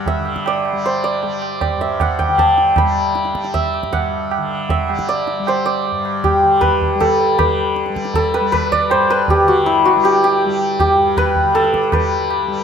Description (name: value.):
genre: indian classical, Hindustani.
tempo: 157 BPM.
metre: 3/4.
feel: straight.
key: G raga bilaval.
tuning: A4 = 440 Hz.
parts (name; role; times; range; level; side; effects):
santur; melody; 0.0-12.6 s; E4 to B5; -15 LUFS; equal; none.
tanpura; drone; 0.0-12.6 s; G2 to G3; -24 LUFS; left 2 dB; none.
tabla; percussion; 0.1-12.4 s; none; -22 LUFS; right 4 dB; none.
room: moderate scoring stage reverb, RT60 1.5 s.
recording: close, detailed microphones.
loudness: -14 LUFS.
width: side -7 dB against mid.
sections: 0.0-7.4 A section; 7.4-12.6 B section.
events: speeding up 0.0-12.6.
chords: none.